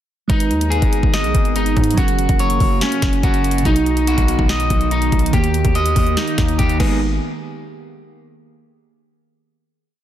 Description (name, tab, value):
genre	hip hop, trap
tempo	143 BPM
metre	4/4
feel	half-time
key	G# minor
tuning	A4 = 440 Hz
part	glassy digital keys	accompaniment	0.3-7.0 s	B2 to B4	-24 LUFS	right 4 dB	chorus
part	warbly tape-like pad	sustained chords	0.7-7.0 s	C#3 to G#4	-26 LUFS	equal	chorus, built-in reverb
part	electric guitar at the edge of break-up	arpeggios	0.3-7.0 s	B3 to D#5	-21 LUFS	equal	digital delay
part	distorted 808-style bass	bass	0.3-7.2 s	F#1 to G#2	-20 LUFS	equal	distortion
part	trap drum kit	drums	0.3-6.9 s	crash cymbal, hi-hat, kick drum, snare drum	-18 LUFS	equal	none
room	light reverb, digital ambience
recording	dense, heavily limited modern master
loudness	-14 LUFS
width	side -11 dB against mid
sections	0.3-7.0 hook; 7.0-8.7 final hit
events	none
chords	0.3 G#m; 2.0 F#; 3.7 B; 5.3 D#; 6.8 G#m; 7.0 N.C.